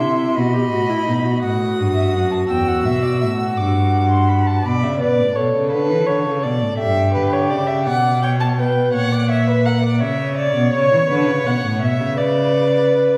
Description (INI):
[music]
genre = classical, baroque-style fugue for string quartet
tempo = 56 BPM (dotted quarters)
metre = 12/8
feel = straight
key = E minor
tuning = A4 = 440 Hz
[part]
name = warm violin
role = melody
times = 0.0-13.2 s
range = B4 to E6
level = -24 LUFS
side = equal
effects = none
[part]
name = warm violin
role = second line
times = 0.0-13.2 s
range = G4 to A5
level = -24 LUFS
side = equal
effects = none
[part]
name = warm viola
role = accompaniment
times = 0.0-4.7 s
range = D#4 to G4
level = -24 LUFS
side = equal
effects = none
[part]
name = clear cello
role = bass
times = 0.0-13.2 s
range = E2 to E3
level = -21 LUFS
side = equal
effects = none
[sound]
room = wet recital hall reverb, RT60 1.6 s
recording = heard from further back in the room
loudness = -18 LUFS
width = mono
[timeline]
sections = 0.0-13.2 A section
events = none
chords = 0.4 B7; 2.5 Em; 4.7 Bm; 6.8 Em/G; 8.9 F#7/A#; 11.1 Bm